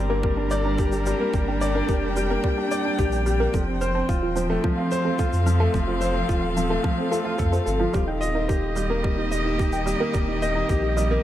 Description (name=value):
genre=piano and strings electronica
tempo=109 BPM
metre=4/4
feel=straight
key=unclear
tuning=A4 = 440 Hz
part: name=warm string quartet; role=sustained chords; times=0.0-11.2 s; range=Eb3 to G5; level=-28 LUFS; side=left 2 dB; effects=sidechain pumping
part: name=warm upright piano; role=riff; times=0.0-11.2 s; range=F3 to Eb5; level=-25 LUFS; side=right 1 dB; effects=tape echo
part: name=warm sub bass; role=bass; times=0.0-11.2 s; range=Eb1 to F2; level=-26 LUFS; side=equal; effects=sidechain pumping
part: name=soft round pluck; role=arpeggios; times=0.1-11.0 s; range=F4 to G6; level=-33 LUFS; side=equal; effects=chorus, sidechain pumping, tape echo
part: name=electronic kick drum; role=drums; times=0.2-10.8 s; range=none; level=-25 LUFS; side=equal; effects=none
part: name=shaker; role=drums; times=0.5-11.1 s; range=none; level=-41 LUFS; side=left 2 dB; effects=none
room=light reverb, small room ambience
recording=none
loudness=-21 LUFS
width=side -12 dB against mid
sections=0.0-11.2 A section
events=none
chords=0.0 Gm; 3.5 F; 7.9 Eb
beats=0.23 0.79 | 1.34 1.89 2.44 2.99 | 3.54 4.09 4.64 5.19 | 5.74 6.29 6.84 7.39 | 7.94 8.49 9.04 9.59 | 10.14 10.69